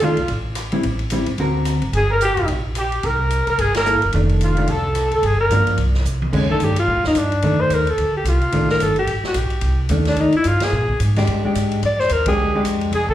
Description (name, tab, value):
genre	jazz, small-group swing and bop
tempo	218 BPM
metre	4/4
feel	swing 59% on 8ths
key	F mixolydian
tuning	A4 = 438 Hz
part	breathy alto saxophone	melody	0.0-13.1 s	D4 to D5	-20 LUFS	left 1 dB	slapback echo
part	warm trumpet	second line	0.0-5.8, 12.9-13.1 s	F4 to Bb4	-24 LUFS	right 4 dB	slapback echo
part	hollow-body jazz guitar	accompaniment	0.0-1.8, 3.9-12.9 s	D3 to A#4	-21 LUFS	equal	slapback echo
part	upright bass	bass	0.0-13.1 s	F1 to C3	-21 LUFS	equal	none
part	swinging big-band drum kit	drums	0.0-13.1 s	crash cymbal, hi-hat, kick drum, ride cymbal, rim click, snare drum, toms	-28 LUFS	equal	none
room	moderate club reverb, RT60 0.8 s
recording	live gig heard through the venue's PA, club reverb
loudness	-16 LUFS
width	side -12 dB against mid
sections	0.0-6.3 A section; 6.3-13.1 A section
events	band accent 3.7, 10.6, 12.2; drum fill 6.1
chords	0.0 F13; 0.8 Am7; 1.4 Daug7; 1.9 Gm; 3.0 C6; 4.1 F6; 5.2 Gm7; 5.8 N.C.; 6.3 F13; 10.7 Bb6